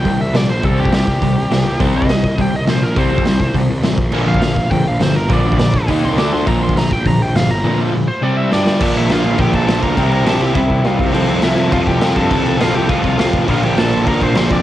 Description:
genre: punk rock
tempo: 205 BPM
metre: 4/4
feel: straight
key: unclear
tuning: A4 = 440 Hz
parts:
  - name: biting lead guitar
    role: melody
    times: 0.0-14.6 s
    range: C4 to D6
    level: -22 LUFS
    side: equal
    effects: overdrive, cassette tape
  - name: crunchy overdriven guitar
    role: riff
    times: 0.0-14.6 s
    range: F2 to Eb4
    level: -20 LUFS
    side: right 6 dB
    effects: cassette tape
  - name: fuzz picked electric bass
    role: bass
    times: 0.0-14.6 s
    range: G1 to G2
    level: -19 LUFS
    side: equal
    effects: overdrive
  - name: sludgy distorted guitar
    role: riff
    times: 0.1-14.6 s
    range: Bb2 to Bb4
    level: -19 LUFS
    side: left 5 dB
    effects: overdrive, cassette tape
  - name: raw garage drum kit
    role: drums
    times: 0.1-14.6 s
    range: crash cymbal, hi-hat, kick drum, snare drum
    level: -18 LUFS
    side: equal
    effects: cassette tape
room: little or no reverb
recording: home recording on cassette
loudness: -12 LUFS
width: side -13 dB against mid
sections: 0.0-8.8 A section; 8.8-14.6 B section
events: lead electric guitar solo 0.0-8.8; drum fill 8.5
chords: 0.0 C5; 4.0 N.C.; 4.1 Bb; 5.9 Eb5; 6.2 D5; 6.5 Bb; 8.2 C5; 8.5 G5; 8.8 Bb; 10.0 C; 11.0 F/C; 13.5 Bb

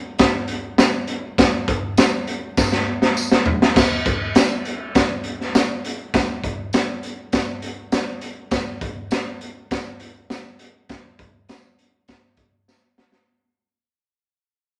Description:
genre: soul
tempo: 101 BPM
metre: 4/4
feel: straight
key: none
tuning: none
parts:
  - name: raw garage drum kit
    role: drums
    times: 0.2-13.3 s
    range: crash cymbal, hi-hat, kick drum, snare drum, toms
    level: -20 LUFS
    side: equal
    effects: none
  - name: tambourine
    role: percussion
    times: 0.2-12.8 s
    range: none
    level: -34 LUFS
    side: equal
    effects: none
room: moderate studio reverb, RT60 0.9 s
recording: none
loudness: -20 LUFS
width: mono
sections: 0.0-3.8 A section; 3.8-13.3 B section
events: drum fill 2.6-3.8, 12.7-13.3; fade-out 3.8-13.3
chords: none

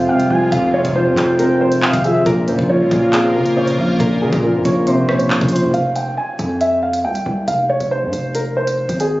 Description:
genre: hip hop, drill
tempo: 138 BPM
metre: 4/4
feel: half-time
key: F minor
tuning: A4 = 439 Hz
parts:
  - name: dark concert grand piano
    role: melody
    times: 0.0-9.2 s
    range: Ab4 to Ab5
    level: -20 LUFS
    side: equal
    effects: digital delay
  - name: gliding portamento lead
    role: second line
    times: 0.0-5.7 s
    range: C5 to Ab5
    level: -24 LUFS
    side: right 1 dB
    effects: chorus, digital delay
  - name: dark concert grand piano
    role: accompaniment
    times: 0.0-5.8 s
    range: F2 to C4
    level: -16 LUFS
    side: equal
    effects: none
  - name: sweeping resonant pad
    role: sustained chords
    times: 0.0-5.7 s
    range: Bb2 to Bb4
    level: -25 LUFS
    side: right 1 dB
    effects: chorus
  - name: distorted 808-style bass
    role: bass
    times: 0.0-9.2 s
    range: F1 to F3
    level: -22 LUFS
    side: equal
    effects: distortion
  - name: drill drum kit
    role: drums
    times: 0.2-9.1 s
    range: handclaps, hi-hat, kick drum, rim click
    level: -23 LUFS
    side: equal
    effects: none
room: light reverb, digital ambience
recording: recorded on a phone in the room, studio reverb, nothing above 7.7 kHz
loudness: -14 LUFS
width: side -18 dB against mid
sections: 0.0-5.7 A section; 5.7-9.2 B section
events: none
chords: 0.0 Fm; 2.3 Bbmadd9; 5.7 F5

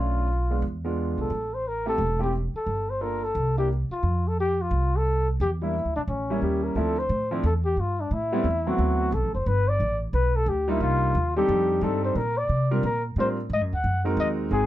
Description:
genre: jazz, small-group swing and bop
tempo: 177 BPM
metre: 4/4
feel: swing 62% on 8ths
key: unclear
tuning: A4 = 440 Hz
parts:
  - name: trumpet with bucket mute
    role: melody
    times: 0.0-14.7 s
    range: C#4 to F#5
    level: -26 LUFS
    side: left 2 dB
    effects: none
  - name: clear grand piano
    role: accompaniment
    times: 0.0-14.7 s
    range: F3 to Bb4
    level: -28 LUFS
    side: right 1 dB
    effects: none
  - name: upright bass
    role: bass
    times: 0.0-14.7 s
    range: E1 to C3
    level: -26 LUFS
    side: right 1 dB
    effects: none
room: light reverb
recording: dark, warm production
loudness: -23 LUFS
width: side -14 dB against mid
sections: 0.0-6.8 A section; 6.8-14.7 B section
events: none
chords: 0.0 Bm7b5; 0.6 E7b9; 1.3 Am7; 2.7 Gm9; 3.4 C9; 4.0 F; 5.4 Em7b5; 6.1 A7b9; 6.8 Dm9; 8.1 Am7; 8.8 D13; 9.5 Gadd9; 10.8 Cm11; 11.5 F13; 12.2 Bb69; 13.5 G#9

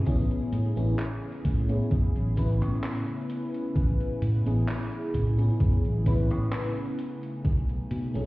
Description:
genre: vaporwave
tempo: 65 BPM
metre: 4/4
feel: straight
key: A lydian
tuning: A4 = 440 Hz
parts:
  - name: FM electric piano with soft pad layer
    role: accompaniment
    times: 0.0-8.3 s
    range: A3 to B4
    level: -32 LUFS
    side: left 1 dB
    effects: phaser, lush chorus, tape echo
  - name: warbly tape-like pad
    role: sustained chords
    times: 0.4-8.3 s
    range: C#3 to G#5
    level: -36 LUFS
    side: left 1 dB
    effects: chorus, built-in reverb
  - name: fingered electric bass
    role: bass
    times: 0.1-8.3 s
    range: A1 to B2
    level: -26 LUFS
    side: equal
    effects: none
  - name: electronic kick drum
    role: drums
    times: 0.1-7.6 s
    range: none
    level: -26 LUFS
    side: equal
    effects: overdrive, vintage 12-bit sampler grit
  - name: gated 80s digital drum machine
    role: drums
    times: 0.1-8.3 s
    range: handclaps, hi-hat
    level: -36 LUFS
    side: equal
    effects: gated reverb, overdrive, vintage 12-bit sampler grit
room: light reverb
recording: heard muffled through a wall, stone room reverb, cassette tape, EQ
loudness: -24 LUFS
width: side -19 dB against mid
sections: 0.1-8.3 A section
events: none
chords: 0.1 Amaj9; 7.0 B13

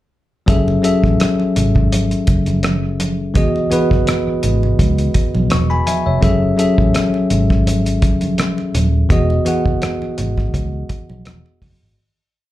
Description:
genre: lush 1970s-style soul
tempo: 84 BPM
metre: 4/4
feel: swing 54% on 16ths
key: F# dorian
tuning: A4 = 440 Hz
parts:
  - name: bell-like tine electric piano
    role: accompaniment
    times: 0.5-12.0 s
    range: E3 to C#6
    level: -17 LUFS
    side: left 2 dB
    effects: plate reverb, slapback echo
  - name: vintage muted fingered electric bass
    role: bass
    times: 0.5-11.9 s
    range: D#1 to C#2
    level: -18 LUFS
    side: equal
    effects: none
  - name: cloth-damped thuddy drum kit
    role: drums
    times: 0.5-11.8 s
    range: hi-hat, kick drum, rim click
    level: -17 LUFS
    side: equal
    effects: none
  - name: congas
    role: percussion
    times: 0.5-11.8 s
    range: none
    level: -25 LUFS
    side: right 4 dB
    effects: none
room: light reverb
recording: live gig heard through the venue's PA, club reverb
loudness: -13 LUFS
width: side -15 dB against mid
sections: 0.5-12.0 verse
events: fade-out 9.1-12.0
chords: 0.5 F#m7; 3.4 Emaj7; 6.2 F#m7; 9.1 Emaj7

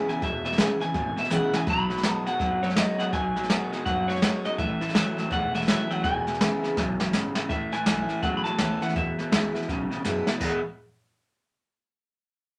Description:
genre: rockabilly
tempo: 165 BPM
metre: 4/4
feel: swing 63% on 8ths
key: E major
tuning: A4 = 440 Hz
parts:
  - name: electric guitar through a small old amp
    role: melody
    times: 0.0-10.0 s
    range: C#5 to B5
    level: -32 LUFS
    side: equal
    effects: spring reverb
  - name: picked steel-string acoustic guitar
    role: accompaniment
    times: 0.0-10.6 s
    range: E2 to F#4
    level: -33 LUFS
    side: equal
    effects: none
  - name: electric guitar through a small old amp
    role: riff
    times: 0.0-10.6 s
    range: E2 to E4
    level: -34 LUFS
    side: equal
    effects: none
  - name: upright bass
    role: bass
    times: 0.1-10.6 s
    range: E1 to F#2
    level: -37 LUFS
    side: equal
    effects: none
  - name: jazz brush drum kit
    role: drums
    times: 0.1-10.5 s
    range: crash cymbal, hi-hat, kick drum, snare drum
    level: -30 LUFS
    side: equal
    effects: none
room: moderate studio ambience, RT60 0.5 s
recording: none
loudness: -26 LUFS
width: mono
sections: 0.0-7.5 A section; 7.5-10.4 B section; 10.4-11.9 C section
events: drum fill 1.3-1.7, 6.8-7.5, 10.0-10.4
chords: 0.0 E; 1.7 B; 4.6 A; 6.0 E; 7.5 A; 9.0 E

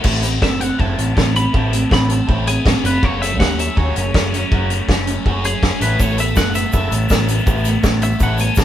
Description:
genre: indie rock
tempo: 162 BPM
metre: 4/4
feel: straight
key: unclear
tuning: A4 = 440 Hz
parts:
  - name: biting overdriven guitar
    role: riff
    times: 0.0-8.6 s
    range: F#2 to A4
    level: -24 LUFS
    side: left 3 dB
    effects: phaser
  - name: overdriven electric guitar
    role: riff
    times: 0.0-8.6 s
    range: F#3 to F#4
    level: -22 LUFS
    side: right 3 dB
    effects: none
  - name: growling picked electric bass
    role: bass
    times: 0.0-8.6 s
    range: F#1 to D#2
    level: -20 LUFS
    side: equal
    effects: overdrive
  - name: loose indie drum kit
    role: drums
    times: 0.0-8.6 s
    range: crash cymbal, hi-hat, kick drum, snare drum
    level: -18 LUFS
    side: equal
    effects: none
  - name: twelve-string electric guitar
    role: melody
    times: 0.4-8.6 s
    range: G#4 to B5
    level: -24 LUFS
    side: left 1 dB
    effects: none
  - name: tube shaker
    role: percussion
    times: 6.0-8.6 s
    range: none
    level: -34 LUFS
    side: right 5 dB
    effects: none
room: moderate stone room reverb, RT60 1.3 s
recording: band playing live in one room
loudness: -14 LUFS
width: side -11 dB against mid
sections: 0.1-8.6 A section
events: clean electric guitar solo 0.1-8.6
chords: 0.1 Amadd9; 3.0 F#madd9; 5.8 Asus2

